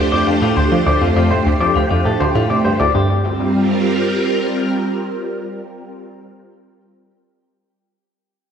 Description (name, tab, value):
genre	ambient, sequencer-driven space music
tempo	101 BPM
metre	4/4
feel	straight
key	G minor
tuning	A4 = 440 Hz
part	phased string machine	sustained chords	0.0-6.1 s	G3 to C5	-18 LUFS	right 1 dB	ensemble chorus, phaser
part	analog pluck	riff	0.0-3.2 s	D2 to F3	-18 LUFS	equal	chorus, phaser, ping-pong delay
part	pulsing gated texture	texture	0.0-3.0 s	G4 to G5	-32 LUFS	right 1 dB	none
part	clean electric guitar	arpeggios	0.1-3.2 s	F4 to D5	-21 LUFS	left 3 dB	auto-pan, ping-pong delay
room	wet concert hall reverb, RT60 2.3 s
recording	nothing above 11.0 kHz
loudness	-14 LUFS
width	side -8 dB against mid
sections	0.0-2.9 A section; 2.9-5.3 B section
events	none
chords	0.0 Dm7; 2.9 Gm